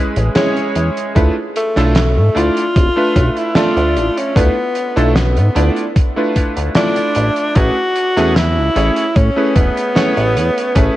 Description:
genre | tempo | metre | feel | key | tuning
vaporwave | 75 BPM | 4/4 | straight | unclear | A4 = 440 Hz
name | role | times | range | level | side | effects
clear tenor saxophone | melody | 0.0-11.0 s | G#3 to F#4 | -18 LUFS | equal | tape echo
clear electric grand piano | accompaniment | 0.0-10.9 s | G#3 to E5 | -18 LUFS | equal | wide subtle chorus, tape echo
chorused synth bass | bass | 0.2-10.9 s | D1 to A2 | -15 LUFS | equal | none
damped 70s drum kit | drums | 0.2-10.9 s | hi-hat, snare drum | -19 LUFS | equal | vintage 12-bit sampler grit, gated reverb
electronic kick drum | drums | 1.2-10.9 s | none | -14 LUFS | equal | overdrive, vintage 12-bit sampler grit
room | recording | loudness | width
light reverb, studio ambience | cassette tape | -12 LUFS | side -15 dB against mid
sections
0.0-11.0 A section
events
none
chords
0.0 Amaj7 (rootless); 1.2 Dm6; 7.6 Amaj7

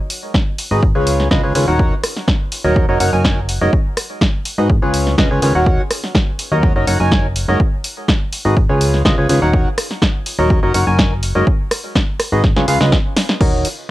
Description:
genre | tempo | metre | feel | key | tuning
piano house | 124 BPM | 4/4 | straight | unclear | A4 = 439 Hz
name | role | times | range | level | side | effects
punchy analog drum machine | drums | 0.1-13.8 s | crash cymbal, hi-hat, rim click, snare drum | -19 LUFS | equal | none
electronic kick drum | drums | 0.3-13.5 s | none | -16 LUFS | equal | none
percussive organ stab | riff | 0.7-13.7 s | Db3 to Ab5 | -18 LUFS | equal | lush chorus, sidechain pumping, tape echo
solid FM bass | bass | 0.7-13.7 s | Eb1 to Ab2 | -18 LUFS | equal | sidechain pumping
room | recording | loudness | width
light reverb | home recording on cassette | -13 LUFS | side -16 dB against mid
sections
0.0-13.4 A section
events
drum fill 12.4-13.4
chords
0.0 Abm7; 0.8 Db7; 1.8 Ebm7; 2.8 Gb6; 3.7 Abm7; 4.7 Db7; 5.7 Ebm7; 6.6 Gb6; 7.6 Abm7; 8.6 Db7; 9.5 Ebm7; 10.5 Gb6; 11.5 Abm7; 12.4 Db7

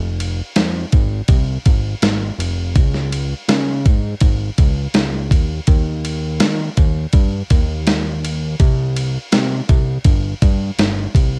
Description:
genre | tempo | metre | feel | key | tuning
indie pop, bedroom pop | 82 BPM | 4/4 | straight | Eb major | A4 = 440 Hz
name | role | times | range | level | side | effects
fat analog bass | bass | 0.0-11.4 s | F1 to Eb3 | -22 LUFS | equal | none
dusty soul sampler-style drum kit | drums | 0.2-11.3 s | kick drum, ride cymbal, snare drum | -18 LUFS | equal | none
room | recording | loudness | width
light reverb | home recording on cassette | -17 LUFS | mono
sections
0.0-11.4 A section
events
none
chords
none

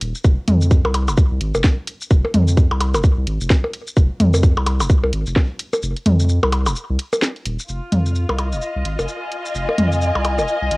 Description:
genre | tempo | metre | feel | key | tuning
minimal techno | 129 BPM | 4/4 | swing 60% on 16ths | F minor | A4 = 440 Hz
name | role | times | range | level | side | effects
saturated sub bass | bass | 0.0-10.8 s | Eb1 to F2 | -19 LUFS | equal | sidechain pumping
garage drum kit | drums | 0.0-10.8 s | hi-hat, shaker, snare drum | -25 LUFS | equal | overdrive, studio reverb, cassette tape
electronic kick drum | drums | 0.2-5.5 s | none | -13 LUFS | equal | overdrive, studio reverb, cassette tape
electronic toms and percussion blips | percussion | 0.5-10.5 s | none | -20 LUFS | equal | studio reverb, cassette tape, analog delay
dark studio string section | texture | 7.7-10.8 s | F4 to Ab5 | -23 LUFS | left 1 dB | sidechain pumping
room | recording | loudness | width
light reverb | home recording on cassette | -16 LUFS | side -24 dB against mid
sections
0.0-7.7 A section; 7.7-10.8 B section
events
drop 0.0-7.7; break 5.8-7.7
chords
0.0 F5; 7.7 Fm7

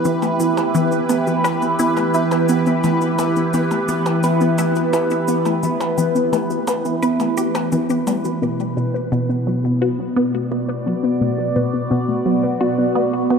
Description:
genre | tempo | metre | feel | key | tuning
ambient, sequencer-driven space music | 86 BPM | 4/4 | straight | B minor | A4 = 442 Hz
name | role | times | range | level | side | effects
phased analog pad | sustained chords | 0.0-13.4 s | B2 to D5 | -19 LUFS | right 1 dB | phaser, chorus
warbly dusty pluck | arpeggios | 0.0-13.4 s | A3 to B4 | -23 LUFS | moving between left 4 dB and right 2 dB | chorus, auto-pan, ping-pong delay
shaker and percussion blips | percussion | 0.0-8.4 s | none | -31 LUFS | equal | overdrive, ping-pong delay
pulsing gated texture | texture | 0.0-13.4 s | B3 to B4 | -30 LUFS | right 3 dB | chorus, built-in reverb
resonant blip pluck | riff | 0.1-13.4 s | B2 to B4 | -23 LUFS | left 1 dB | chorus, phaser, ping-pong delay
room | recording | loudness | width
wet cathedral reverb, RT60 5.2 s | in a vast, echoing space | -16 LUFS | side -6 dB against mid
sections
0.0-8.4 A section; 8.4-13.4 A section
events
none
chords
0.0 Em; 8.4 Bm

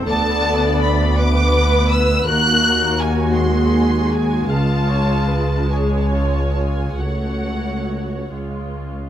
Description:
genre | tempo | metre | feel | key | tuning
classical, slow romantic movement for string orchestra | 44-56 BPM (dotted quarters) | 6/8 | rubato | unclear | A4 = 442 Hz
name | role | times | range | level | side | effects
muted symphonic violin section | second line | 0.0-9.0 s | G#4 to E#5 | -25 LUFS | left 1 dB | none
muted symphonic viola section | accompaniment | 0.0-9.1 s | G#3 to B4 | -23 LUFS | left 1 dB | none
muted symphonic cello section | bass | 0.0-9.1 s | C#2 to D#2 | -23 LUFS | right 1 dB | none
muted symphonic double bass section | bass | 0.0-9.1 s | C#2 to D#2 | -20 LUFS | right 1 dB | none
muted symphonic violin section | melody | 0.1-8.3 s | F#5 to F#6 | -22 LUFS | left 1 dB | none
room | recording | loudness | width
little or no reverb | close, detailed microphones | -15 LUFS | side -11 dB against mid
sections
0.0-9.1 A section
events
none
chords
0.1 D5; 2.3 G#7/D#; 4.5 C#; 7.0 F#m/C#; 8.3 C#

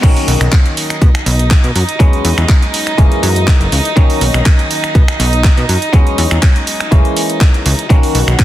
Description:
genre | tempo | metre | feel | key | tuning
filtered disco house | 122 BPM | 4/4 | swing 53% on 16ths | B major | A4 = 440 Hz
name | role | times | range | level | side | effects
clav | accompaniment | 0.0-8.4 s | D#3 to C#4 | -19 LUFS | left 1 dB | phaser, sidechain pumping
rich chamber violin section | sustained chords | 0.0-8.4 s | D#4 to F#5 | -21 LUFS | right 2 dB | sidechain pumping
plucky analog bass | bass | 0.0-8.3 s | F#1 to B2 | -14 LUFS | equal | sidechain pumping
electronic kick drum | drums | 0.0-8.4 s | none | -9 LUFS | equal | none
house drum kit | drums | 0.0-8.4 s | crash cymbal, finger snaps, handclaps, hi-hat | -18 LUFS | right 1 dB | soft clipping on snare
room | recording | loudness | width
little or no reverb | dense, heavily limited modern master | -9 LUFS | side -14 dB against mid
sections
0.0-8.4 A section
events
none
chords
0.0 Bmaj7; 2.0 E69; 3.0 F#7; 4.0 Bmaj7; 5.9 E69; 6.9 F#7; 7.9 Bmaj7

